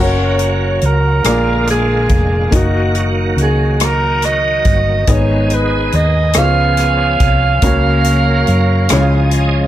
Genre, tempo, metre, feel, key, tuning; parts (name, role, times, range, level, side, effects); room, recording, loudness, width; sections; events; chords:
slow gospel; 47 BPM (dotted quarters); 6/8; straight; F# major; A4 = 440 Hz
breathy alto saxophone; melody; 0.0-9.3 s; F#4 to E#5; -17 LUFS; right 2 dB
warm upright piano; accompaniment; 0.0-9.7 s; G#2 to A#5; -18 LUFS; left 2 dB
bright tonewheel organ; sustained chords; 0.0-9.7 s; C#3 to D#5; -22 LUFS; right 3 dB; slow rotary speaker, chorus vibrato
hollow-body short-scale fingered electric bass; bass; 0.0-9.7 s; E#1 to F#2; -15 LUFS; equal
natural country drum kit; drums; 0.4-9.5 s; hi-hat, kick drum, rim click; -17 LUFS; equal
small room ambience; -11 LUFS; side -12 dB against mid
0.0-9.7 A section
0.0 F#; 1.3 A#7; 2.5 D#m/F#; 5.1 G#m; 6.4 C#7; 7.6 F#/C#; 8.9 C#